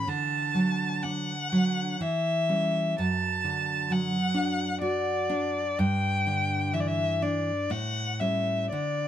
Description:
romantic duo for violin and classical guitar; 63 BPM; 3/4; uneven beats, rubato; D major; A4 = 440 Hz
rich violin; melody; 0.0-9.1 s; D5 to B5; -28 LUFS; left 2 dB
nylon-string guitar; accompaniment; 0.0-9.1 s; F#2 to F#4; -28 LUFS; right 2 dB
light reverb; -25 LUFS; side -10 dB against mid
0.0-9.1 A section
0.1 D; 2.0 Em6; 3.0 D/F#; 5.8 Em7/G; 7.7 A7

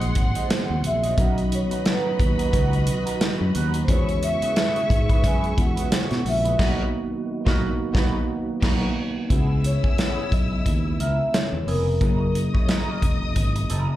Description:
lush 1970s-style soul; 89 BPM; 4/4; swing 58% on 16ths; C# dorian; A4 = 442 Hz
vibraphone with soft mallets; melody; 0.0-12.3 s; A#4 to G#5; -28 LUFS; equal; plate reverb, slapback echo, tape echo
rich studio string section; second line; 0.0-14.0 s; E4 to E6; -34 LUFS; left 2 dB; plate reverb, slapback echo
mellow tine electric piano; accompaniment; 0.0-14.0 s; D#3 to G#4; -30 LUFS; equal; medium stereo tremolo, slapback echo
tonewheel organ; sustained chords; 0.0-14.0 s; B2 to F#4; -34 LUFS; equal
electric guitar through a small old amp; riff; 0.0-13.9 s; B3 to F#5; -34 LUFS; right 6 dB; wah, slapback echo
fingered electric bass; bass; 0.0-13.9 s; E1 to B2; -24 LUFS; equal
modern studio drum kit; drums; 0.0-13.9 s; crash cymbal, hi-hat, kick drum, snare drum; -23 LUFS; equal
light reverb; live gig heard through the venue's PA, club reverb; -20 LUFS; side -14 dB against mid
0.0-9.3 A section; 9.3-14.0 B section
band accent 6.6-9.3
0.0 G#7; 1.2 Bmaj7; 3.9 E6; 6.6 Bmaj7; 9.3 C#m7; 12.0 F#7

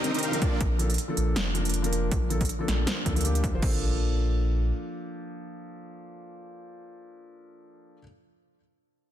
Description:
future bass; 159 BPM; 4/4; swing 55% on 16ths, half-time; Bb major; A4 = 439 Hz
felt-muted upright piano; accompaniment; 0.0-8.0 s; Eb3 to C5; -33 LUFS; left 1 dB; sidechain pumping, digital delay
dense compressed supersaw; riff; 0.0-0.6 s; Bb3 to F5; -31 LUFS; right 1 dB; sidechain pumping, digital delay
big-room dance drum kit; drums; 0.0-3.5 s; hi-hat, snare drum; -31 LUFS; right 1 dB; overdrive
big-room dance drum kit; drums; 0.4-3.7 s; crash cymbal, kick drum; -28 LUFS; equal; overdrive
saturated sub bass; bass; 0.6-4.7 s; F1 to D2; -27 LUFS; equal; sidechain pumping
light reverb; dense, heavily limited modern master; -24 LUFS; side -11 dB against mid
0.0-3.6 A section; 3.6-6.6 B section
filter sweep on sub bass 0.0-3.6
0.4 Bbmaj7

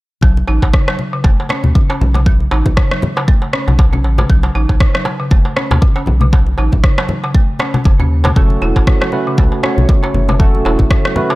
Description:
afro house; 118 BPM; 4/4; swing 56% on 16ths; A4 = 439 Hz
folk marimba with hard mallets; arpeggios; 0.2-11.4 s; C#3 to E4; -21 LUFS; equal; sidechain pumping, analog delay
round analog bass; bass; 0.2-10.9 s; E1 to D#2; -14 LUFS; equal; sidechain pumping
electronic kick drum; drums; 0.2-11.0 s; -11 LUFS; equal
congas; percussion; 0.2-11.3 s; -20 LUFS; left 2 dB
darbuka; percussion; 0.2-11.4 s; -23 LUFS; right 2 dB
electronic rim click; drums; 0.7-11.1 s; -19 LUFS; equal
barky tine electric piano; stabs; 8.4-11.4 s; A3 to C#5; -18 LUFS; right 2 dB; overdrive, lush chorus, sidechain pumping, analog delay
small room ambience; dry, gritty hardware recording; -11 LUFS; side -19 dB against mid
0.2-11.4 A section
0.2 B7; 8.4 F#m

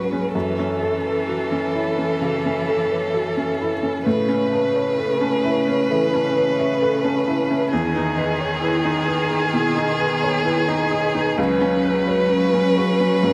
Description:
neoclassical piano and strings; 65 BPM; 4/4; rubato; F# dorian; A4 = 440 Hz
rich violin; melody; 0.0-13.3 s; G#4 to B4; -24 LUFS; equal; delay
rich cello; second line; 0.0-13.3 s; C#3 to F#3; -28 LUFS; equal
felt-muted upright piano; accompaniment; 0.0-13.3 s; C#2 to C#5; -26 LUFS; equal
vibraphone with soft mallets; arpeggios; 0.0-13.3 s; C#4 to A5; -30 LUFS; equal; delay
wet lush hall reverb, RT60 2.8 s; dreamy mix soaked in reverb; -20 LUFS; mono
0.0-13.3 A section
0.3 F#m7; 4.1 Aadd9; 7.7 Emaj7; 11.4 C#7sus4

